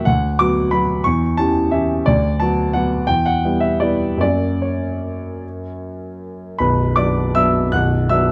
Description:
classical, piano waltz; 144-190 BPM; 3/4; rubato; B minor; A4 = 438 Hz
warm grand piano; solo; 0.0-8.3 s; B0 to F#6; -18 LUFS; equal
light reverb; dark, warm production; -18 LUFS; mono
0.0-6.6 A section; 6.6-8.3 B section
0.1 Bm/D; 1.0 C#dim/E; 2.1 Bm/D; 3.1 Em; 4.2 F#; 6.6 Bm
| 0.06 0.39 0.73 | 1.05 1.38 1.73 | 2.07 2.41 2.75 | 3.09 3.44 3.82 | 4.21 4.62 5.03 | 5.43 5.81 6.21 | 6.59 6.97 7.36 | 7.73 8.11

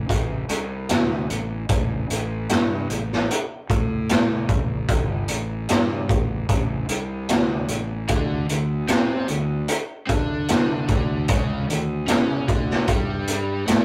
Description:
blues rock power trio and southern rock; 75 BPM; 4/4; straight; A mixolydian; A4 = 441 Hz
fuzz fingered electric bass; bass; 0.0-13.8 s; G1 to D3; -29 LUFS; equal; overdrive
raw garage drum kit; drums; 0.1-13.8 s; hi-hat, kick drum, snare drum; -24 LUFS; equal
overdriven electric guitar; riff; 8.1-13.8 s; C#3 to D4; -30 LUFS; equal
light reverb; rough rehearsal-room recording, tube saturation; -23 LUFS; mono
0.0-13.8 A section
0.0 A7(no3); 8.1 Csus2/D; 11.3 A7#11/C#
0.09 0.89 | 1.69 2.49 3.29 4.09 | 4.89 5.69 6.49 7.29 | 8.09 8.89 9.69 10.49 | 11.29 12.09 12.89 13.69

